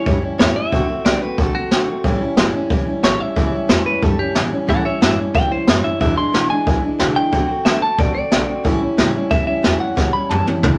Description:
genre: rockabilly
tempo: 182 BPM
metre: 4/4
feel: straight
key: A mixolydian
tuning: A4 = 440 Hz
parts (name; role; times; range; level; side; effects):
- clean electric guitar; melody; 0.0-10.5 s; F#4 to C6; -24 LUFS; equal; none
- picked steel-string acoustic guitar; accompaniment; 0.0-10.8 s; E2 to F#4; -24 LUFS; equal; none
- upright bass; bass; 0.1-10.8 s; G1 to B2; -28 LUFS; equal; none
- jazz brush drum kit; drums; 0.1-10.7 s; hi-hat, kick drum, snare drum, toms; -20 LUFS; equal; none
room: moderate club reverb, RT60 0.6 s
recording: none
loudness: -17 LUFS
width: mono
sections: 0.0-10.8 A section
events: clean electric guitar solo 0.0-10.8; drum fill 10.0-10.8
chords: 0.0 A7; 0.7 D7; 2.0 A7; 6.0 E7; 7.3 D7; 8.7 A7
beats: 0.07 0.40 | 0.73 1.06 1.39 1.72 | 2.05 2.38 2.71 3.04 | 3.37 3.70 4.03 4.36 | 4.69 5.02 5.35 5.68 | 6.01 6.34 6.67 7.00 | 7.33 7.66 7.99 8.32 | 8.65 8.98 9.31 9.64 | 9.97 10.30 10.63

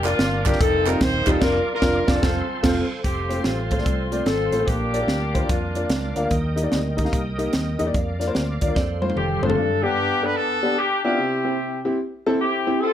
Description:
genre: uptempo gospel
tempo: 148 BPM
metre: 4/4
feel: swing 64% on 8ths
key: C major from 9.6 s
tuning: A4 = 440 Hz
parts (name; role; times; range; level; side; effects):
- warm horn section; melody; 0.0-6.3, 9.2-12.9 s; A3 to C5; -23 LUFS; left 2 dB; none
- warm grand piano; accompaniment; 0.0-12.8 s; G2 to F5; -24 LUFS; left 1 dB; none
- bright tonewheel organ; sustained chords; 0.0-9.6 s; A4 to Eb6; -32 LUFS; right 2 dB; fast rotary speaker, chorus vibrato
- fingered electric bass; bass; 0.0-9.5 s; Eb1 to F2; -26 LUFS; equal; none
- group handclap; percussion; 0.0-1.3 s; none; -31 LUFS; right 8 dB; none
- crisp fusion drum kit; drums; 0.1-9.6 s; crash cymbal, hi-hat, kick drum, snare drum, toms; -24 LUFS; right 1 dB; none
- direct-recorded clean electric guitar; second line; 8.8-9.6 s; A4 to D5; -33 LUFS; right 6 dB; spring reverb
room: moderate large studio reverb, RT60 0.9 s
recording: faint mains hum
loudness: -19 LUFS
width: side -10 dB against mid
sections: 0.0-3.0 A section; 3.0-9.6 B section; 9.6-12.9 A section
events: band accent 1.4-3.0; drum fill 8.8-9.6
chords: 0.0 Bb/F; 0.6 F9sus4; 1.4 Bb/F; 2.2 F; 4.7 Bb; 6.3 Eb; 7.9 Bb/F; 8.8 F; 9.6 G; 11.2 C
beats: 0.20 0.60 1.01 | 1.41 1.82 2.23 2.63 | 3.04 3.45 3.86 4.26 | 4.67 5.08 5.49 5.90 | 6.31 6.72 7.13 7.54 | 7.94 8.35 8.76 9.17 | 9.57 9.98 10.38 10.79 | 11.19 11.60 12.00 12.41 | 12.81

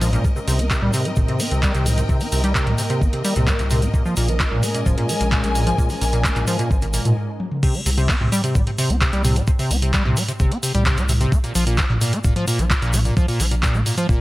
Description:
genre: acid house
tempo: 130 BPM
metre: 4/4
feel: straight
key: C phrygian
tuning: A4 = 441 Hz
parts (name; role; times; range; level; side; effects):
- warbly tape-like pad; sustained chords; 0.0-7.6 s; Eb3 to C5; -30 LUFS; equal; chorus, built-in reverb, phaser, sidechain pumping
- liquid acid bass; riff; 0.0-14.2 s; Ab2 to C4; -23 LUFS; equal; chorus, tube saturation, sidechain pumping, tape echo
- saturated sub bass; bass; 0.0-14.2 s; F1 to Bb2; -22 LUFS; equal; sidechain pumping
- booming analog drum machine; drums; 0.0-14.1 s; crash cymbal, handclaps, hi-hat, toms; -23 LUFS; equal; none
- tube shaker; percussion; 0.0-14.2 s; none; -33 LUFS; left 2 dB; none
- rich studio string section; texture; 0.0-7.2 s; Bb4 to Ab5; -29 LUFS; left 1 dB; sidechain pumping
- electronic kick drum; drums; 0.2-14.2 s; none; -19 LUFS; equal; none
room: digital ambience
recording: dry, gritty hardware recording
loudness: -17 LUFS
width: side -18 dB against mid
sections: 0.0-7.6 A section; 7.6-14.2 B section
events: fade-in on string section 0.0-7.6; break 7.2-7.6; drum fill 7.4; drop 7.6-14.2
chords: 0.2 Cm7; 3.9 Bbm7; 7.6 C5; 11.3 Bb5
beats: | 0.24 0.71 1.17 1.63 | 2.09 2.55 3.02 3.48 | 3.94 4.40 4.86 5.32 | 5.78 6.25 6.71 7.17 | 7.63 8.09 8.55 9.02 | 9.48 9.94 10.40 10.86 | 11.32 11.78 12.24 12.71 | 13.17 13.63 14.09

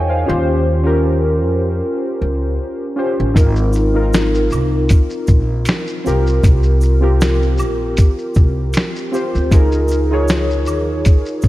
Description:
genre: lo-fi hip hop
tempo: 78 BPM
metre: 4/4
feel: swing 55% on 16ths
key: unclear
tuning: A4 = 440 Hz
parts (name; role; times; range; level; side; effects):
- warbly lo-fi synth keys; accompaniment; 0.0-11.5 s; C4 to Ab5; -18 LUFS; equal; chorus
- upright bass; bass; 0.0-11.5 s; Ab1 to F2; -16 LUFS; equal; none
- lo-fi sampler-style drum kit; drums; 3.4-11.5 s; hi-hat, kick drum, shaker, snare drum; -14 LUFS; equal; vintage 12-bit sampler grit
- tube shaker and woodblock; percussion; 3.4-11.5 s; none; -33 LUFS; right 1 dB; none
room: light reverb, small room ambience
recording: none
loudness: -13 LUFS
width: side -16 dB against mid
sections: 0.0-11.5 A section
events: none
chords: 0.3 Eb13; 3.4 Ab6; 6.0 C7sus4; 9.5 Db6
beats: | 0.28 1.05 1.82 2.59 | 3.36 4.13 4.90 5.67 | 6.43 7.20 7.97 8.74 | 9.51 10.28 11.05

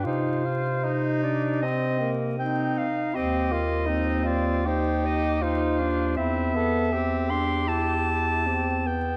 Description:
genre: classical, lyrical piece for single-reed quartet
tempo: 78 BPM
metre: 4/4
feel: rubato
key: C minor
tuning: A4 = 437 Hz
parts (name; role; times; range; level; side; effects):
- clear clarinet; melody; 0.0-9.2 s; C5 to C6; -31 LUFS; equal; none
- bright alto saxophone; second line; 0.0-9.2 s; Bb3 to F4; -31 LUFS; equal; none
- warm tenor saxophone; accompaniment; 0.0-9.0 s; C4 to A4; -32 LUFS; equal; none
- dark bass clarinet; bass; 0.0-9.2 s; Eb2 to C3; -31 LUFS; equal; none
room: moderate concert hall reverb, RT60 2.6 s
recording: vinyl crackle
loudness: -25 LUFS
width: mono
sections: 0.0-9.2 A section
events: none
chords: 0.1 Cm; 3.1 Cm/Eb; 6.2 C/E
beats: | 0.06 0.84 1.62 2.38 | 3.15 3.89 4.66 5.43 | 6.18 6.93 7.70 8.48

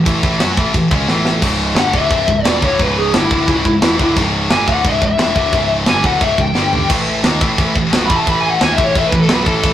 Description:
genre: heavy metal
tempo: 176 BPM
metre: 4/4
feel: straight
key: C# minor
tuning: A4 = 438 Hz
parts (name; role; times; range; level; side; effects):
- heavy high-gain guitar; riff; 0.0-9.7 s; C#2 to F#4; -18 LUFS; left 3 dB; distortion
- high-gain distorted guitar; riff; 0.0-9.7 s; C#2 to F#4; -20 LUFS; right 4 dB; distortion
- growling picked electric bass; bass; 0.0-9.7 s; C#1 to F#2; -23 LUFS; equal; overdrive
- tight metal drum kit; drums; 0.1-9.7 s; china cymbal, crash cymbal, kick drum, snare drum, toms; -17 LUFS; right 1 dB; none
- high-gain lead guitar; melody; 1.8-9.7 s; E4 to B5; -16 LUFS; left 2 dB; distortion
room: moderate studio reverb, RT60 0.6 s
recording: rough rehearsal-room recording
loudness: -12 LUFS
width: side -11 dB against mid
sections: 0.0-1.4 A section; 1.4-9.7 B section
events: drum fill 1.1-1.4, 6.6-6.9; lead electric guitar solo 1.4-9.7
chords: 0.0 A5; 1.4 C#m; 6.6 G5; 6.9 A5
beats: | 0.07 0.41 0.75 1.09 | 1.43 1.77 2.12 2.46 | 2.80 3.14 3.48 3.82 | 4.17 4.51 4.85 5.19 | 5.53 5.87 6.21 6.56 | 6.90 7.24 7.58 7.92 | 8.27 8.61 8.95 9.29 | 9.63

